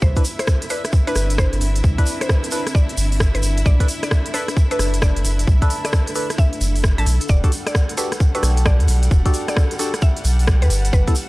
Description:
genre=UK garage, two-step garage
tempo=132 BPM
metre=4/4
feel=swing 64% on 16ths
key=E minor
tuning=A4 = 439 Hz
part: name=mallet-like synth pluck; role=melody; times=0.0-11.1 s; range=B4 to A5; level=-29 LUFS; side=equal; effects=chorus, analog delay
part: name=rich symphonic violin section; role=sustained chords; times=0.0-11.3 s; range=G3 to F#5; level=-33 LUFS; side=equal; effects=sidechain pumping
part: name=saturated sub bass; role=bass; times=0.0-11.1 s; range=E1 to E2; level=-18 LUFS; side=equal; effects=sidechain pumping
part: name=electronic kick drum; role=drums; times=0.0-11.1 s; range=none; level=-16 LUFS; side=equal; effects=none
part: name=tube shaker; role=percussion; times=0.0-11.3 s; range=none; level=-32 LUFS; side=right 2 dB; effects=none
part: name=granular cloud pad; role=texture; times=0.0-11.3 s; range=B3 to B5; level=-32 LUFS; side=left 1 dB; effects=built-in reverb, sidechain pumping
part: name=percussive organ stab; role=stabs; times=0.2-11.2 s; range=B3 to E5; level=-27 LUFS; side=equal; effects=chorus, phaser
part: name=garage drum kit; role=drums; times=0.2-11.3 s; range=hi-hat, rim click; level=-26 LUFS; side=equal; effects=none
room=digital ambience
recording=dry, gritty hardware recording, cassette tape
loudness=-16 LUFS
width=side -20 dB against mid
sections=0.0-11.3 A section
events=none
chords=0.0 Cmaj9; 3.7 Bm7; 7.3 Em11 (rootless); 10.7 G69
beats=| 0.02 0.47 0.93 1.38 | 1.84 2.29 2.75 3.20 | 3.66 4.11 4.57 5.02 | 5.47 5.93 6.38 6.84 | 7.29 7.75 8.20 8.66 | 9.11 9.57 10.02 10.47 | 10.93

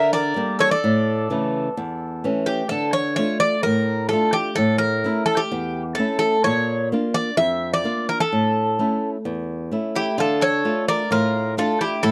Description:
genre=greek folk, Greek bouzouki band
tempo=128 BPM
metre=4/4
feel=straight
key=D harmonic minor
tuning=A4 = 439 Hz
part: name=Greek bouzouki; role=melody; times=0.0-12.1 s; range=G4 to E5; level=-23 LUFS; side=equal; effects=none
part: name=mandolin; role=second line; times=0.0-2.4, 10.0-12.1 s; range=E4 to Bb4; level=-30 LUFS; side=equal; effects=none
part: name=flamenco guitar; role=accompaniment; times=0.0-12.1 s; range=E2 to F4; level=-25 LUFS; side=equal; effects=none
room=little or no reverb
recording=dry, close 1970s-style studio recording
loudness=-21 LUFS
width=mono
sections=0.0-2.7 A section; 2.7-12.1 B section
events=none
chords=0.0 Gm; 0.8 A; 2.7 Dm; 4.6 A; 6.4 Bb; 8.3 A; 10.2 Dm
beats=0.36 | 0.82 1.29 1.76 2.23 | 2.70 3.17 3.64 4.11 | 4.58 5.04 5.51 5.98 | 6.45 6.91 7.38 7.85 | 8.31 8.78 9.24 9.71 | 10.17 10.63 11.10 11.56 | 12.02

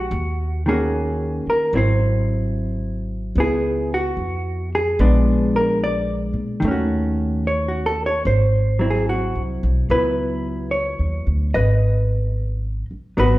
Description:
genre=jazz ballad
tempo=74 BPM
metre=4/4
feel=swing 66% on 8ths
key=C# minor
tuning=A4 = 442 Hz
part: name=hollow-body jazz guitar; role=accompaniment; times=0.0-13.4 s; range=D#3 to D#5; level=-21 LUFS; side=equal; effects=none
part: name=upright bass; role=bass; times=0.0-13.4 s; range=G#1 to A#2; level=-21 LUFS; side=equal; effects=none
room=wet large studio reverb, RT60 1.2 s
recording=band playing live in one room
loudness=-18 LUFS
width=side -17 dB against mid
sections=0.0-9.9 A section; 9.9-13.4 B section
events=none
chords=0.1 D#m7; 1.7 G#aug7; 3.4 C#m7; 5.0 A#7b9; 6.6 D#m7b5; 8.2 G#7alt; 9.9 C#m11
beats=| 0.12 0.93 1.74 2.55 | 3.36 4.17 4.99 5.80 | 6.61 7.43 8.25 9.07 | 9.90 10.72 11.54 12.35 | 13.16

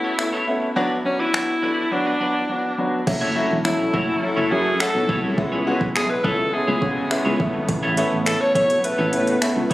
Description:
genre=dance-pop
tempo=104 BPM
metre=4/4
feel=straight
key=F# minor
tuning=A4 = 439 Hz
part: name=bright alto saxophone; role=melody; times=0.0-9.4 s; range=C#4 to C#5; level=-23 LUFS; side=equal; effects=tape echo
part: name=clear baby grand piano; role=accompaniment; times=0.0-9.7 s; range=F#3 to A4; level=-24 LUFS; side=left 1 dB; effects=sidechain pumping
part: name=twelve-string electric guitar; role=riff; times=0.0-9.7 s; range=A3 to D5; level=-28 LUFS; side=right 2 dB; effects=lush chorus
part: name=smooth R&B drum kit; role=drums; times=0.2-9.7 s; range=crash cymbal, finger snaps, hi-hat, kick drum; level=-25 LUFS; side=equal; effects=overdrive
part: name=sweeping resonant pad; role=sustained chords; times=3.1-9.7 s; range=C#3 to A4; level=-29 LUFS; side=equal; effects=chorus, sidechain pumping
part: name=sustaining fretless electric bass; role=bass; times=3.1-9.7 s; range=E1 to C#3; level=-24 LUFS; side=equal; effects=analog chorus, sidechain pumping
room=light reverb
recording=recorded on a phone in the room, studio reverb, compression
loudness=-18 LUFS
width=side -16 dB against mid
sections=0.0-3.1 A section; 3.1-9.7 B section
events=break 2.5-3.1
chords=0.0 Aadd9; 0.8 Bm; 3.1 F#m7; 5.4 C#m7; 7.4 Aadd9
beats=0.19 | 0.76 1.34 1.92 2.50 | 3.07 3.65 4.23 4.80 | 5.38 5.96 6.53 7.11 | 7.69 8.26 8.84 9.42

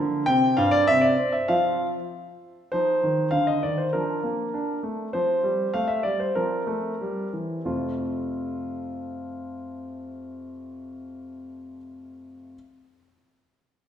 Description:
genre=classical-period piano sonatina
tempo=89-101 BPM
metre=2/4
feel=straight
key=F major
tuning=A4 = 440 Hz
part: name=clear concert grand piano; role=solo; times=0.0-12.6 s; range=F2 to G5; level=-24 LUFS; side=equal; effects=none
room=wet recital hall reverb, RT60 1.6 s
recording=heard from further back in the room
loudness=-22 LUFS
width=side -9 dB against mid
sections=0.0-2.7 A section; 2.7-7.7 B section; 7.7-10.3 C section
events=slowing down 4.5-7.7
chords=0.3 C5; 0.9 N.C.; 1.5 F5; 3.9 Bb/F; 5.1 F; 6.4 C7/F; 7.7 F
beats=| 0.28 0.89 | 1.50 2.12 | 2.73 3.33 | 3.94 4.54 | 5.13 5.74 | 6.35 7.00 | 7.66 8.33 | 8.99 9.65

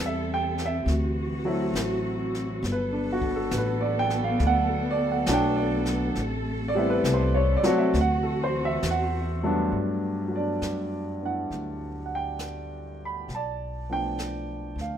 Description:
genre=jazz ballad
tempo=68 BPM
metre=4/4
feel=swing 66% on 8ths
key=G major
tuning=A4 = 440 Hz
part: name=warm grand piano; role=accompaniment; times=0.0-15.0 s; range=G2 to B5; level=-26 LUFS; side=right 1 dB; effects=none
part: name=dark symphonic cello section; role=sustained chords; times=0.0-9.7 s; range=C3 to A4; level=-30 LUFS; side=left 1 dB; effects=none
part: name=upright bass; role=bass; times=0.0-15.0 s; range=G1 to G2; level=-30 LUFS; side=equal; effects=none
part: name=jazz brush drum kit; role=drums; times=0.6-15.0 s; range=brushed snare drum, hi-hat, kick drum, snare drum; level=-35 LUFS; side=left 1 dB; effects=none
room=moderate studio reverb, RT60 0.8 s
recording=minimal, uncompressed stereo recording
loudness=-24 LUFS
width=side -9 dB against mid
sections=0.0-9.7 A section; 9.7-15.0 B section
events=none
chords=0.0 Am7; 0.9 D9; 2.6 Gmaj9; 6.2 Am7; 7.9 D9; 9.7 Gmaj9; 13.3 Bm7b5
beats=0.87 1.75 | 2.64 3.52 4.40 5.28 | 6.17 7.05 7.94 8.84 | 9.73 10.62 11.51 12.40 | 13.29 14.18

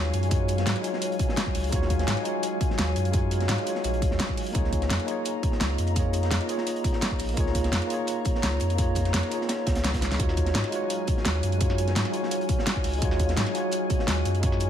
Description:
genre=liquid drum and bass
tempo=170 BPM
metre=4/4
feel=straight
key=Eb minor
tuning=A4 = 441 Hz
part: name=tine electric piano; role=accompaniment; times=0.0-14.7 s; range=Ab3 to Db5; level=-30 LUFS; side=equal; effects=medium stereo tremolo, tape echo
part: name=glassy FM pad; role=sustained chords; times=0.0-14.7 s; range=Gb3 to Bb5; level=-32 LUFS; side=left 1 dB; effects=ensemble chorus, built-in reverb
part: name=warm sub bass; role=bass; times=0.0-14.7 s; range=Bb1 to Ab2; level=-27 LUFS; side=equal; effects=tube saturation
part: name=crunchy breakbeat drum kit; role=drums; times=0.1-14.7 s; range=hi-hat, snare drum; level=-36 LUFS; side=equal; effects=high-pass filter on hats, high-pass filter on snare, high-pass filter on room
part: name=pop drum kit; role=drums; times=0.1-14.7 s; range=hi-hat, snare drum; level=-31 LUFS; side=equal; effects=none
part: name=electronic kick drum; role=drums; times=0.3-14.5 s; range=none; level=-27 LUFS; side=equal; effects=none
room=light reverb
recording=none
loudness=-23 LUFS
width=side -10 dB against mid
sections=0.0-14.7 A section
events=drum fill 10.0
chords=0.0 Ebm11; 4.5 Db69; 10.2 Ebm11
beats=| 0.31 0.67 1.02 1.37 | 1.73 2.08 2.43 2.79 | 3.14 3.49 3.84 4.20 | 4.55 4.90 5.25 5.61 | 5.96 6.31 6.67 7.02 | 7.37 7.73 8.08 8.43 | 8.79 9.14 9.49 9.84 | 10.20 10.55 10.90 11.26 | 11.61 11.96 12.31 12.67 | 13.02 13.37 13.73 14.08 | 14.43

